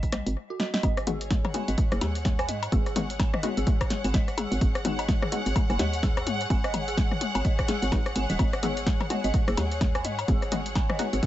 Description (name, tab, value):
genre	minimal techno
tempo	127 BPM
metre	4/4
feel	swing 60% on 16ths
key	G# minor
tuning	A4 = 440 Hz
part	hollow knocking FM bass	bass	0.0-11.2 s	D#1 to G#2	-30 LUFS	equal	sidechain pumping
part	electronic kick drum	drums	0.0-11.3 s	none	-26 LUFS	right 1 dB	none
part	punchy analog drum machine	drums	0.0-11.3 s	hi-hat, snare drum	-33 LUFS	right 1 dB	none
part	dark detuned synth bell	riff	0.1-11.2 s	F#4 to G#5	-36 LUFS	right 2 dB	chorus, phaser, sidechain pumping, digital delay
part	organic electronic drum kit	percussion	0.1-11.3 s	cowbell, rim click, toms	-32 LUFS	left 5 dB	ping-pong delay
part	rich studio string section	texture	0.8-11.3 s	G#4 to F#5	-34 LUFS	left 2 dB	sidechain pumping
part	filtered dub chord stab	stabs	1.1-11.1 s	G#3 to F#4	-35 LUFS	left 2 dB	lush chorus, ping-pong delay
room	little or no reverb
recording	nothing above 8.0 kHz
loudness	-24 LUFS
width	side -13 dB against mid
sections	0.8-11.3 A section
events	drum fill 0.6; drop 0.8-11.3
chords	0.0 G#m; 0.8 G#7(no3)